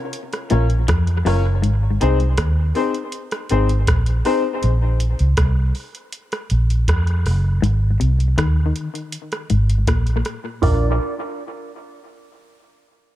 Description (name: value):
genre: dub reggae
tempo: 80 BPM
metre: 4/4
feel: straight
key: unclear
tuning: A4 = 436 Hz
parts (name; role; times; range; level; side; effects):
- soft vintage rhythm box; drums; 0.1-10.8 s; hi-hat, kick drum, rim click, toms; -22 LUFS; right 1 dB; none
- semi-hollow electric guitar; riff; 0.5-1.9, 7.6-10.1 s; Gb2 to F3; -26 LUFS; left 4 dB; tremolo, low-pass filter, tape echo
- dark upright piano; stabs; 0.5-4.4, 10.6-10.9 s; C4 to D5; -23 LUFS; left 4 dB; low-pass filter, tape echo
- vintage muted fingered electric bass; bass; 0.5-11.0 s; Gb1 to F2; -17 LUFS; equal; none
- mellow electric guitar; accompaniment; 10.6-10.9 s; F4 to D5; -26 LUFS; right 8 dB; phaser, low-pass filter, tape echo
room: digital ambience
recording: dark, warm production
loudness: -16 LUFS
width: side -14 dB against mid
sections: 0.0-10.6 A section; 10.6-13.2 B section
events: break 0.0-10.6; filter sweep 0.0-10.6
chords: 0.0 Bbm; 1.6 Ab; 4.6 Bb5; 7.6 Ab; 10.6 Bb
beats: 0.14 0.89 | 1.63 2.38 3.13 3.88 | 4.63 5.38 6.13 6.88 | 7.63 8.38 9.13 9.88 | 10.63